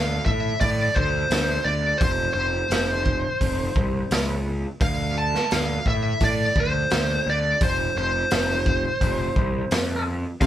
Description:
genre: quiet-loud alternative rock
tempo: 86 BPM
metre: 4/4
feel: straight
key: unclear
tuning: A4 = 440 Hz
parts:
  - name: smooth overdriven lead guitar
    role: melody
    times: 0.0-10.5 s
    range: C5 to A5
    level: -24 LUFS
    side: equal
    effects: none
  - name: fuzz picked electric bass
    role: bass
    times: 0.0-10.5 s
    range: F1 to A2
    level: -26 LUFS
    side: equal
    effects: overdrive
  - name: raw garage drum kit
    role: drums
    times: 0.3-10.5 s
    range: hi-hat, kick drum, snare drum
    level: -25 LUFS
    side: equal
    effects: none
  - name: electric guitar through a small old amp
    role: arpeggios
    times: 10.4-10.5 s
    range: D3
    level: -21 LUFS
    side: left 2 dB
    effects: none
room: light reverb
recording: band playing live in one room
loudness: -20 LUFS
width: side -12 dB against mid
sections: 0.0-10.5 A section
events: none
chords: 0.0 D5; 2.0 F5; 4.8 D5; 7.6 F5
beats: 0.61 1.31 | 2.01 2.71 3.41 4.11 | 4.81 5.51 6.21 6.91 | 7.61 8.31 9.01 9.71 | 10.41

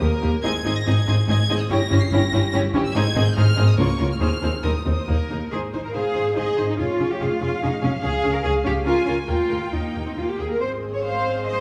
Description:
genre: quick classical-period movement for string orchestra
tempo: 142 BPM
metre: 3/4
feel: rubato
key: Ab major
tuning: A4 = 441 Hz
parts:
  - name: clear studio violin section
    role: melody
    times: 0.0-11.6 s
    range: Eb5 to C7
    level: -33 LUFS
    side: equal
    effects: none
  - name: rich studio violin section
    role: second line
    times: 0.0-11.6 s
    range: G4 to Ab5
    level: -32 LUFS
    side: equal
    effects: none
  - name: rich studio viola section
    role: accompaniment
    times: 0.0-11.6 s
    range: Bb3 to C5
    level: -29 LUFS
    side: equal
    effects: none
  - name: rich studio cello section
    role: bass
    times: 0.0-11.6 s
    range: Db2 to Db5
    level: -25 LUFS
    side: equal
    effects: none
  - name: rich studio double bass section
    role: bass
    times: 0.0-11.6 s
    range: F1 to Eb2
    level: -27 LUFS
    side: equal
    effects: none
room: wet scoring stage reverb, RT60 1.6 s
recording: small room ambience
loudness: -22 LUFS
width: mono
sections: 0.0-5.5 A section; 5.5-11.6 A section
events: none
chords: 0.4 Ab; 1.7 Gdim7; 2.9 Ab; 3.8 Bbm/Db; 4.2 Ab/Eb (rootless); 5.1 Eb5; 5.5 Ab; 6.8 Db/F; 8.0 Db; 8.9 Bbm; 9.3 Eb; 10.6 Ab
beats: 0.01 | 0.44 0.86 1.28 | 1.70 2.12 2.53 | 2.95 3.36 3.78 | 4.21 4.64 5.08 | 5.52 5.95 6.37 | 6.79 7.21 7.63 | 8.04 8.44 8.86 | 9.29 9.73 10.16 | 10.61 11.03 11.45

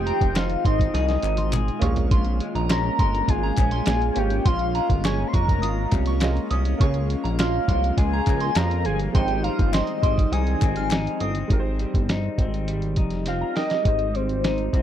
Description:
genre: indie pop, bedroom pop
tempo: 102 BPM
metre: 4/4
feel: straight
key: Ab major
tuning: A4 = 440 Hz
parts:
  - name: soft octave-layered synth lead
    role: melody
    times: 0.0-14.8 s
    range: C5 to C6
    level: -26 LUFS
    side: left 1 dB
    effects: phaser, analog chorus
  - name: soft synth bell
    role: second line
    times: 0.0-11.3 s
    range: Bb5 to F6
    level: -34 LUFS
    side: right 6 dB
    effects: phaser, lush chorus, tape echo
  - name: clear upright piano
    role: accompaniment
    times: 0.0-14.8 s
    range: G3 to Bb5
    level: -35 LUFS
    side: right 6 dB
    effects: none
  - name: electric guitar through a small old amp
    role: accompaniment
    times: 0.0-14.8 s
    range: Ab2 to Ab4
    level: -32 LUFS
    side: left 4 dB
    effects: lush chorus, vibrato effect
  - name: granular cloud pad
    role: sustained chords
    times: 0.0-11.5 s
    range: Eb3 to F4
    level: -32 LUFS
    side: equal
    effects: built-in reverb
  - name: chorused synth bass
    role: bass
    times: 0.0-14.8 s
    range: F1 to F2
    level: -24 LUFS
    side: equal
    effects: none
  - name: lo-fi sampler-style drum kit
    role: drums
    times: 0.1-14.8 s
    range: hi-hat, kick drum, snare drum, toms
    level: -23 LUFS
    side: equal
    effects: none
  - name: group handclap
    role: percussion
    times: 0.4-11.0 s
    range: none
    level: -36 LUFS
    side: left 9 dB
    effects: none
room: little or no reverb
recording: dry, close 1970s-style studio recording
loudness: -20 LUFS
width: side -10 dB against mid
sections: 0.0-11.5 A section; 11.5-13.8 B section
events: drum fill 0.9-2.1, 13.3-13.8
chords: 0.0 Fm7; 1.8 Bbm7; 6.8 Db6; 9.1 Abmaj7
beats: 0.35 0.94 1.53 | 2.11 2.70 3.28 3.87 | 4.46 5.04 5.63 6.21 | 6.80 7.39 7.97 8.56 | 9.15 9.73 10.32 10.91 | 11.50 12.09 12.67 13.26 | 13.85 14.44

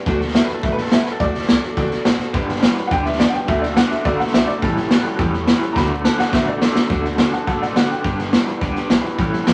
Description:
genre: rockabilly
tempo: 211 BPM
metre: 4/4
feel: straight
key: D major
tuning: A4 = 440 Hz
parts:
  - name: picked steel-string acoustic guitar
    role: accompaniment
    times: 0.0-9.5 s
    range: A2 to B4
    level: -27 LUFS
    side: equal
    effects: none
  - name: upright bass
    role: bass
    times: 0.1-9.5 s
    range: E1 to D2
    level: -33 LUFS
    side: equal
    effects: none
  - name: raw garage drum kit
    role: drums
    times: 0.1-9.5 s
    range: hi-hat, kick drum, snare drum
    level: -20 LUFS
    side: equal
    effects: none
  - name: bright upright piano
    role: melody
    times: 0.3-8.5 s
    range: F#4 to B5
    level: -26 LUFS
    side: equal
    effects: none
  - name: electric guitar through a small old amp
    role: riff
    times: 2.3-9.5 s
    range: G2 to B3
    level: -26 LUFS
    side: equal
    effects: tremolo
room: moderate large studio reverb, RT60 1.4 s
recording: vinyl crackle, nothing above 10.8 kHz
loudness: -18 LUFS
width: mono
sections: 0.0-6.9 A section; 6.9-9.5 B section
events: drum fill 5.8-6.9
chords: 0.1 D; 2.3 G; 3.5 D; 4.6 A7; 5.8 D; 8.0 G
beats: | 0.07 0.35 0.64 0.92 | 1.21 1.49 1.78 2.06 | 2.35 2.63 2.92 3.20 | 3.49 3.77 4.05 4.34 | 4.62 4.91 5.19 5.48 | 5.76 6.05 6.33 6.62 | 6.90 7.19 7.47 7.76 | 8.05 8.33 8.62 8.90 | 9.19 9.48

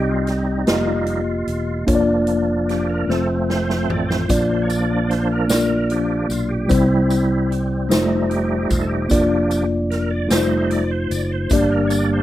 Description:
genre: slow gospel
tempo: 50 BPM (dotted quarters)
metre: 6/8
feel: straight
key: Bb major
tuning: A4 = 439 Hz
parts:
  - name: mellow tine electric piano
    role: accompaniment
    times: 0.0-12.2 s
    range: G2 to Eb5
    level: -19 LUFS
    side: left 2 dB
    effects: medium stereo tremolo
  - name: bright tonewheel organ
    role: sustained chords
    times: 0.0-12.2 s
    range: F3 to D5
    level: -24 LUFS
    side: right 4 dB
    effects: fast rotary speaker, chorus vibrato
  - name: fingered electric bass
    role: bass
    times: 0.0-12.2 s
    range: E1 to C2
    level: -24 LUFS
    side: equal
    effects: none
  - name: swinging big-band drum kit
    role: drums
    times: 0.3-12.1 s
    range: hi-hat, kick drum, snare drum, toms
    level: -23 LUFS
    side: equal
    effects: none
  - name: tambourine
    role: percussion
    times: 4.3-12.2 s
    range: none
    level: -32 LUFS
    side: left 4 dB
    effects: none
room: little or no reverb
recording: rough home demo mix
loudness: -17 LUFS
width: side -14 dB against mid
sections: 0.0-12.2 A section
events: tonewheel organ solo 0.0-12.2; drum fill 3.1-4.3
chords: 0.0 Cm; 0.7 F9sus4; 1.9 Bb/F; 3.1 F; 4.3 Bb; 6.7 C; 7.9 F7; 9.1 Bb/F; 10.3 F7; 11.5 Gm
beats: 0.68 | 1.88 3.09 | 4.29 5.50 | 6.70 7.91 | 9.11 10.31 | 11.51

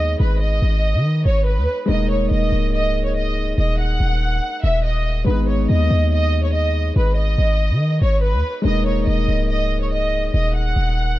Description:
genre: hip hop, drill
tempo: 142 BPM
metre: 4/4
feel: half-time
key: G# minor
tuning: A4 = 440 Hz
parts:
  - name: warm studio violin section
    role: melody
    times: 0.0-11.2 s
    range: B4 to F#5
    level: -23 LUFS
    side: right 1 dB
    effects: low-pass filter
  - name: dark baby grand piano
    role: accompaniment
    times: 0.0-11.2 s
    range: G#3 to G#4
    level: -26 LUFS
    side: left 2 dB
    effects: low-pass filter
  - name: hard-hitting 808-style bass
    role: bass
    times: 0.0-11.2 s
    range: C#1 to D#3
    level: -18 LUFS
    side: equal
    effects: none
room: small room ambience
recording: dark, warm production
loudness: -16 LUFS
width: side -16 dB against mid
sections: 0.0-11.2 A section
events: none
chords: 0.0 G#m; 1.9 D#sus4; 5.3 G#m; 8.7 D#sus4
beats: | 0.20 0.62 1.04 1.47 | 1.89 2.31 2.73 3.16 | 3.58 4.00 4.42 4.85 | 5.27 5.69 6.12 6.54 | 6.96 7.38 7.80 8.23 | 8.65 9.07 9.49 9.92 | 10.34 10.76 11.19

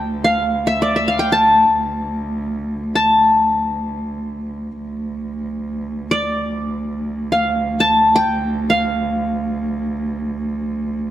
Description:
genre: Turkish makam ensemble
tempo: free time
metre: none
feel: none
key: D makam nihavent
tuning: A4 = 440 Hz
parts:
  - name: qanun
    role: melody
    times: 0.0-10.7 s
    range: D5 to A5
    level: -16 LUFS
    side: left 1 dB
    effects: none
  - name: dark cello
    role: drone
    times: 0.0-11.1 s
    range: D2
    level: -23 LUFS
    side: right 2 dB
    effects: none
room: moderate plate reverb, RT60 2.9 s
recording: lossy compression artefacts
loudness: -16 LUFS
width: side -12 dB against mid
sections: 0.0-11.1 A section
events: none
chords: none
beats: free time

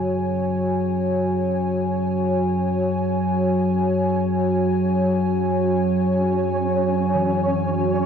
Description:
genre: dark ambient drone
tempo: free time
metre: none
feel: none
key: unclear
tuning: A4 = 440 Hz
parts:
  - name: dark analog pad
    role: sustained chords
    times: 0.0-8.1 s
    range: F#4 to G#5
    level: -22 LUFS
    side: equal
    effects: chorus
  - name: gamelan-type bossed gongs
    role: arpeggios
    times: 0.0-8.1 s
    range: C#3 to E3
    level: -36 LUFS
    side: right 1 dB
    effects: none
  - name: deep rumbling drone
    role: drone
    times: 0.0-8.1 s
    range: F#2 to F#3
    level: -22 LUFS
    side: equal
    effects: built-in reverb
  - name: flickering grainy texture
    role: texture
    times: 6.2-8.1 s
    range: C#4 to C#5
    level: -27 LUFS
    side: equal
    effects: built-in reverb
room: wet cathedral reverb, RT60 5.7 s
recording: worn, warbling old tape, cassette tape, warbly pitch drift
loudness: -19 LUFS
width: side -7 dB against mid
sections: 0.0-8.1 A section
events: none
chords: 0.0 F#sus2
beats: free time

